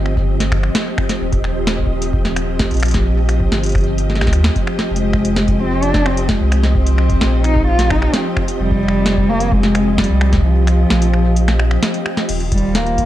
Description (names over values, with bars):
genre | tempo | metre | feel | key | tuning
IDM | 130 BPM | 4/4 | straight | F minor | A4 = 443 Hz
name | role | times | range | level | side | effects
soft string machine | sustained chords | 0.0-13.1 s | Eb3 to Eb5 | -22 LUFS | equal | ensemble chorus
warm sub bass | bass | 0.0-13.1 s | Eb1 to Eb2 | -17 LUFS | equal | none
booming analog drum machine | drums | 0.1-13.1 s | crash cymbal, finger snaps, hi-hat, snare drum | -21 LUFS | equal | none
electronic kick drum | drums | 0.2-13.1 s | none | -20 LUFS | equal | none
dark cello | melody | 4.9-13.1 s | F3 to F4 | -18 LUFS | equal | vintage 12-bit sampler grit, tape echo
room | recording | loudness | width
light reverb, digital ambience | dark, warm production | -13 LUFS | side -13 dB against mid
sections
0.0-12.3 A section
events
kick drops out 10.4-12.3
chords
0.0 Eb69; 4.9 F7sus2; 12.3 Eb69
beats
0.29 0.75 | 1.21 1.67 2.13 2.60 | 3.06 3.52 3.98 4.44 | 4.90 5.37 5.83 6.29 | 6.75 7.21 7.67 8.13 | 8.60 9.06 9.52 9.98 | 10.44 10.90 11.37 11.83 | 12.29 12.75